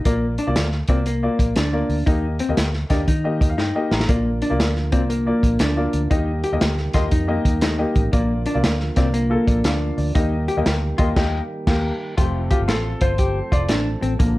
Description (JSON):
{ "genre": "uptempo 1960s-style soul", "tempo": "119 BPM", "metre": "4/4", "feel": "swing 66% on 8ths", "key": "F mixolydian", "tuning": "A4 = 440 Hz", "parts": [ { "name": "vintage hollow-body jazz guitar", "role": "riff", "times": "0.0-14.4 s", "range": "Bb3 to G4", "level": "-24 LUFS", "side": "left 2 dB", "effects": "none" }, { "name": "warm baby grand piano", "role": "accompaniment", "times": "0.1-14.4 s", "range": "C3 to Bb5", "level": "-25 LUFS", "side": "left 2 dB", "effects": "plate reverb" }, { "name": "vintage muted fingered electric bass", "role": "bass", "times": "0.1-14.4 s", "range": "F1 to Eb3", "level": "-23 LUFS", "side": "equal", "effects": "none" }, { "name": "crunchy breakbeat drum kit", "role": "drums", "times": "0.1-14.4 s", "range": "crash cymbal, hi-hat, kick drum, snare drum", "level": "-21 LUFS", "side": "equal", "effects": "none" }, { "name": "tonewheel organ", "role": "sustained chords", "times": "4.1-14.4 s", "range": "D3 to A4", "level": "-31 LUFS", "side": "right 3 dB", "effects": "stopped rotary speaker" } ], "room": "moderate studio reverb, RT60 0.6 s", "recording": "dark, warm production", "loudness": "-18 LUFS", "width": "side -18 dB against mid", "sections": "0.0-12.2 A section; 12.2-14.4 B section", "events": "grand piano fill 3.1-4.1; drum fill 3.6-4.1; band accent 11.2-12.2; grand piano solo 12.2-14.4", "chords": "0.1 Bb; 2.1 Eb; 4.1 Bb; 6.1 Eb; 8.1 Bb; 10.2 Eb; 12.2 F" }